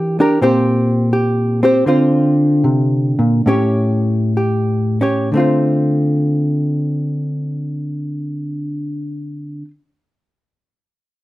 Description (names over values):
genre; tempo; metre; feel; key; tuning
solo jazz; 61-87 BPM; 4/4; swing 68% on 8ths, rubato; D minor; A4 = 440 Hz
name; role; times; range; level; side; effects
hollow-body jazz guitar; solo; 0.0-9.7 s; A2 to C#5; -14 LUFS; equal; none
room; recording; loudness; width
wet studio reverb, RT60 0.6 s; rough home demo mix; -14 LUFS; side -16 dB against mid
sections
0.0-5.3 A section; 5.3-9.2 B section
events
slowing down 0.0-5.3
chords
0.4 Bbsus2; 1.8 Dm7; 3.4 A7; 5.3 Dm7